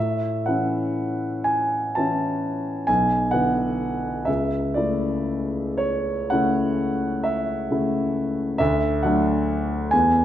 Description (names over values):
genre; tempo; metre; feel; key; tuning
classical, romantic nocturne for solo piano; 37-46 BPM (dotted quarters); 9/8; rubato; A major; A4 = 440 Hz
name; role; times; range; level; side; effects
warm grand piano; solo; 0.0-10.2 s; B1 to A5; -20 LUFS; equal; none
room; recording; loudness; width
wet recital hall reverb, RT60 1.4 s; dark, warm production; -21 LUFS; side -11 dB against mid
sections
0.0-10.2 A section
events
none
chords
0.0 A; 2.9 E5/B; 4.3 A/C#; 8.6 D